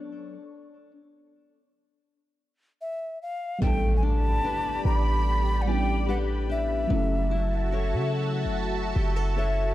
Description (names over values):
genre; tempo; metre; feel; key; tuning
contemporary R&B; 73 BPM; 4/4; straight; unclear; A4 = 439 Hz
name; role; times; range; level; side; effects
mellow FM electric piano; accompaniment; 0.0-9.7 s; F#3 to A4; -34 LUFS; equal; chorus, phaser
lush unison pad; sustained chords; 0.0-9.7 s; F#4 to C#6; -34 LUFS; equal; chorus, phaser
fingerpicked steel-string acoustic guitar; arpeggios; 0.0-9.7 s; F#3 to C#5; -34 LUFS; left 5 dB; digital delay
breathy alto ocarina; melody; 2.8-9.7 s; E5 to B5; -31 LUFS; left 1 dB; digital delay
warm 808-style bass; bass; 3.6-9.7 s; F#1 to C#3; -26 LUFS; equal; none
impact; sound effects; 3.6-6.9 s; none; -34 LUFS; equal; none
room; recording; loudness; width
small room ambience; dark, warm production; -24 LUFS; side -15 dB against mid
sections
0.0-3.6 A section; 3.6-9.7 B section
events
impact 3.6-6.9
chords
0.3 N.C.; 3.6 A9sus4; 6.9 F#m7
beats
| 0.33 1.15 1.97 2.79 | 3.62 4.44 5.26 6.08 | 6.90 7.73 8.55 9.37